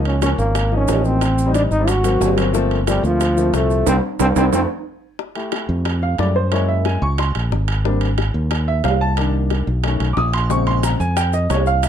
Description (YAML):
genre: Afro-Cuban jazz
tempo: 181 BPM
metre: 4/4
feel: straight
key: unclear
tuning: A4 = 439 Hz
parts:
  - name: warm baby grand piano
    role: accompaniment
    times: 0.0-11.9 s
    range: Bb2 to D#6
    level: -21 LUFS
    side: left 2 dB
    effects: none
  - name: modern bright fingered electric bass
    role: bass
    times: 0.0-11.9 s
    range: G1 to Gb2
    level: -19 LUFS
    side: equal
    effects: none
  - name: clear trombone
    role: melody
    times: 0.1-4.6 s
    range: F3 to Gb4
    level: -20 LUFS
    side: equal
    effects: none
  - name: timbales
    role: percussion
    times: 0.1-11.9 s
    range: none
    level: -25 LUFS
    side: right 7 dB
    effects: none
  - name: bongos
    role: percussion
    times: 0.2-11.9 s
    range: none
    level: -28 LUFS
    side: left 9 dB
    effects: none
  - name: maracas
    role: percussion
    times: 0.2-4.6, 10.5-11.9 s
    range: none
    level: -33 LUFS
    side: right 8 dB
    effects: none
room: little or no reverb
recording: dark, warm production, faint mains hum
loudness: -16 LUFS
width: side -9 dB against mid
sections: 0.0-5.2 A section; 5.2-11.9 B section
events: band accent 3.9-5.2; drum fill 4.7-5.2; grand piano solo 5.2-11.9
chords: 0.0 Db69; 1.2 Am7b5; 1.9 Ab9; 2.5 Gm11; 3.9 C5; 4.5 F; 5.2 Fmaj7; 6.5 Gb9; 7.8 Abmaj9#11; 9.2 Cm7; 9.8 B9; 10.5 Bbm9